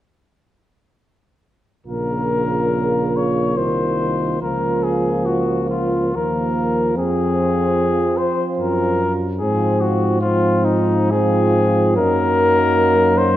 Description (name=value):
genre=classical, hymn-like piece for brass band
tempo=71 BPM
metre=3/4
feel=uneven beats, rubato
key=Bb minor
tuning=A4 = 442 Hz
part: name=mellow cornet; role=melody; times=1.9-13.4 s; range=Eb4 to Db5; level=-20 LUFS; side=left 3 dB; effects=none
part: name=mellow French horn section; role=second line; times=1.9-13.4 s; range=Eb4 to F4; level=-25 LUFS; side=right 6 dB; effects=none
part: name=dark trombone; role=accompaniment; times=1.9-13.4 s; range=Db3 to Gb3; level=-24 LUFS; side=right 2 dB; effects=none
part: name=warm euphonium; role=accompaniment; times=1.9-13.4 s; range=Bb3 to C4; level=-23 LUFS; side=left 1 dB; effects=none
part: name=warm tuba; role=bass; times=1.9-13.4 s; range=Bb1 to Ab2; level=-22 LUFS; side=equal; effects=none
room=moderate recital hall reverb, RT60 1.6 s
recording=worn, warbling old tape, cassette tape, warbly pitch drift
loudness=-16 LUFS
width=side -13 dB against mid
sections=1.9-13.4 A section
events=none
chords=1.9 Bbm; 4.4 Bbm/Db; 7.0 Fm; 9.4 Fm/Ab; 12.0 Ebm/Gb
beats=| 1.87 2.74 3.58 | 4.42 5.25 6.15 | 6.97 7.77 8.59 | 9.42 10.21 11.12 | 11.97 12.79